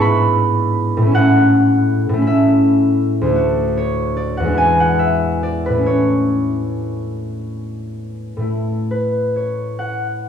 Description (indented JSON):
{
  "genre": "classical, solo harp piece",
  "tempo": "44-54 BPM (dotted quarters)",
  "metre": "6/8",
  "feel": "rubato",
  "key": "A major",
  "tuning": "A4 = 441 Hz",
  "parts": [
    { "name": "concert harp", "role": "solo", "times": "0.0-10.3 s", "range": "D2 to C#6", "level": "-14 LUFS", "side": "equal", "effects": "none" }
  ],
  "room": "moderate recital hall reverb, RT60 1.8 s",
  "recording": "dark, warm production",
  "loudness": "-14 LUFS",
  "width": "side -8 dB against mid",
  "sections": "0.0-8.5 A section; 8.5-10.3 B section",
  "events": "none",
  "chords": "0.0 E7/G#; 1.1 A; 3.4 D; 4.6 E7; 5.9 A",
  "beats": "0.02 | 1.14 2.27 | 3.41 4.59 | 5.87 7.18 | 8.50 9.79"
}